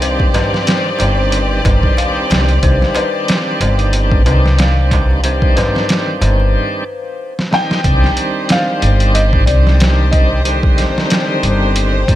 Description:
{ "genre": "trip hop", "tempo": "92 BPM", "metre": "4/4", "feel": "swing 56% on 16ths", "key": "C harmonic minor", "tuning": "A4 = 443 Hz", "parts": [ { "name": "bright tonewheel organ", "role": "accompaniment", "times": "0.0-12.2 s", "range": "D3 to Eb4", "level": "-19 LUFS", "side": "right 1 dB", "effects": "overdrive, slow rotary speaker, tremolo, tape echo" }, { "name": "rich studio violin section", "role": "sustained chords", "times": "0.0-12.2 s", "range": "C4 to D5", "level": "-22 LUFS", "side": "left 2 dB", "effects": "vintage 12-bit sampler grit" }, { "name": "dark detuned synth bell", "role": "arpeggios", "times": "0.0-7.9 s", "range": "B4 to F5", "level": "-23 LUFS", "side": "left 4 dB", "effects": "chorus, tape echo" }, { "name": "upright bass", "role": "bass", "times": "0.0-12.2 s", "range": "G1 to C2", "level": "-14 LUFS", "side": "equal", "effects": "none" }, { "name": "trip hop sampler-style drum kit", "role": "drums", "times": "0.0-12.2 s", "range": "hi-hat, kick drum, snare drum", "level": "-15 LUFS", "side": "equal", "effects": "overdrive" }, { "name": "darbuka", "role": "percussion", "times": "0.0-6.5 s", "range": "none", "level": "-26 LUFS", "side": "right 2 dB", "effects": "none" }, { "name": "felt-muted upright piano", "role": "melody", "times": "7.5-10.7 s", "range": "D5 to G5", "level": "-20 LUFS", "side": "equal", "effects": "vintage 12-bit sampler grit, tape echo" } ], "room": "small room ambience", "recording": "none", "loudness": "-11 LUFS", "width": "side -13 dB against mid", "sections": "0.0-7.8 A section; 7.8-12.2 B section", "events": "break 6.5-7.8; drum fill 7.4-7.8", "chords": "0.0 Cmadd9" }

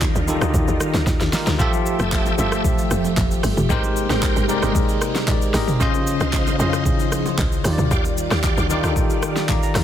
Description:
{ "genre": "amapiano", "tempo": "114 BPM", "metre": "4/4", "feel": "straight", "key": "unclear", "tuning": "A4 = 440 Hz", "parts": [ { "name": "bell-like tine electric piano", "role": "accompaniment", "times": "0.0-9.8 s", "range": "Db3 to D6", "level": "-23 LUFS", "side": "left 2 dB", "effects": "medium stereo tremolo" }, { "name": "phased string machine", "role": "sustained chords", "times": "0.0-9.8 s", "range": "C3 to E5", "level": "-27 LUFS", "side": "right 1 dB", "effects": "ensemble chorus, phaser, sidechain pumping" }, { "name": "tight log drum bass", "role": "bass", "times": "0.0-9.8 s", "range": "F1 to F2", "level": "-23 LUFS", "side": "equal", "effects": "none" }, { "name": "deep house drum kit", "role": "drums", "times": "0.0-9.8 s", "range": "handclaps, hi-hat, kick drum, rim click, shaker, snare drum, toms", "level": "-21 LUFS", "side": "equal", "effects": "none" }, { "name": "bongos and congas", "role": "percussion", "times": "0.0-9.6 s", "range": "none", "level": "-30 LUFS", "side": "right 3 dB", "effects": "none" }, { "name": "bright tonewheel organ", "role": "stabs", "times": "1.6-8.9 s", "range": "G4 to G5", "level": "-29 LUFS", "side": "right 1 dB", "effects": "overdrive, chorus vibrato, fast rotary speaker, ping-pong delay" } ], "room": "digital ambience", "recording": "dense, heavily limited modern master", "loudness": "-17 LUFS", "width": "side -10 dB against mid", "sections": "0.0-9.8 A section", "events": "drum fill 1.1-1.6; tine electric piano fill 5.0-5.8, 8.4-9.8", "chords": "0.0 Ebmaj9; 1.6 Fmaj9; 3.7 Abmaj9; 5.8 Dbmaj9; 7.6 Ebmaj9" }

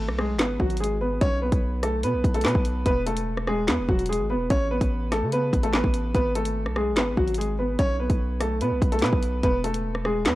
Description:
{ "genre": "hip hop, drill", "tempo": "146 BPM", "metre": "4/4", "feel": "half-time", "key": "G# phrygian", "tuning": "A4 = 440 Hz", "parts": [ { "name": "warm grand piano", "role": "melody", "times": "0.0-10.3 s", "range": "F#3 to C#5", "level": "-25 LUFS", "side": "equal", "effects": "none" }, { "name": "hard-hitting 808-style bass", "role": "bass", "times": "0.0-10.3 s", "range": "E1 to C#3", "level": "-28 LUFS", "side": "equal", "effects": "none" }, { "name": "drill drum kit", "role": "drums", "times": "0.1-10.3 s", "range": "handclaps, hi-hat, kick drum, rim click, snare drum", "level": "-25 LUFS", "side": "equal", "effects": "none" } ], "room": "digital ambience", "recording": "dry, gritty hardware recording, cassette tape", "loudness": "-22 LUFS", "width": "side -16 dB against mid", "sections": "0.0-10.3 A section", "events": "none", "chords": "0.0 G#m; 1.2 N.C.; 2.9 E; 4.5 A; 6.1 G#m; 7.8 N.C.; 9.4 E" }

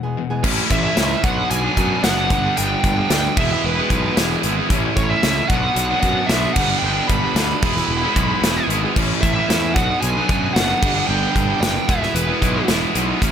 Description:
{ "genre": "quiet-loud alternative rock", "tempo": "113 BPM", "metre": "4/4", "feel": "straight", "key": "A major", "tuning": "A4 = 440 Hz", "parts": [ { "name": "distorted electric guitar", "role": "riff", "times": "0.0-13.3 s", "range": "E2 to E4", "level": "-24 LUFS", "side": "left 14 dB", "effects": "distortion" }, { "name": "cranked stack guitar", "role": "riff", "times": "0.4-13.3 s", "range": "G2 to E4", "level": "-23 LUFS", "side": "right 17 dB", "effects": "overdrive" }, { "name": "fuzz picked electric bass", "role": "bass", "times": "0.4-13.3 s", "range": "E1 to F#2", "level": "-23 LUFS", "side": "equal", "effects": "overdrive" }, { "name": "big rock drum kit", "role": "drums", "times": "0.4-13.3 s", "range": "crash cymbal, hi-hat, kick drum, snare drum", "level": "-21 LUFS", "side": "equal", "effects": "none" }, { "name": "high-gain lead guitar", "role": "melody", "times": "0.7-12.6 s", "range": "B4 to B5", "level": "-23 LUFS", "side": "equal", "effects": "distortion, analog delay" } ], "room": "little or no reverb", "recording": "none", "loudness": "-16 LUFS", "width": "side -8 dB against mid", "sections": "0.4-13.3 A section", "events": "break 0.0-0.4", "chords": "0.4 A; 1.2 Bm; 2.3 G; 3.4 E; 4.7 A; 5.5 Bm; 6.6 G; 7.6 E; 9.0 A; 9.8 Bm; 10.8 G; 11.9 E" }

